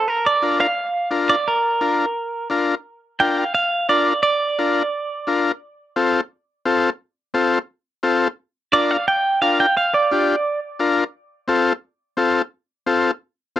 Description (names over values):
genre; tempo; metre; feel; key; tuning
latin; 174 BPM; 4/4; straight; Bb major; A4 = 440 Hz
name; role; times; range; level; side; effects
clean electric guitar; melody; 0.0-5.4, 8.7-10.6 s; Bb4 to G5; -18 LUFS; right 2 dB; spring reverb
combo organ; accompaniment; 0.4-13.6 s; C4 to Bb4; -18 LUFS; left 4 dB; none
room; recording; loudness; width
light reverb; dry, close 1970s-style studio recording; -18 LUFS; side -12 dB against mid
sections
0.0-2.9 A section; 2.9-13.6 B section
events
none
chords
0.1 Bb; 5.6 F; 8.4 Bb; 11.1 F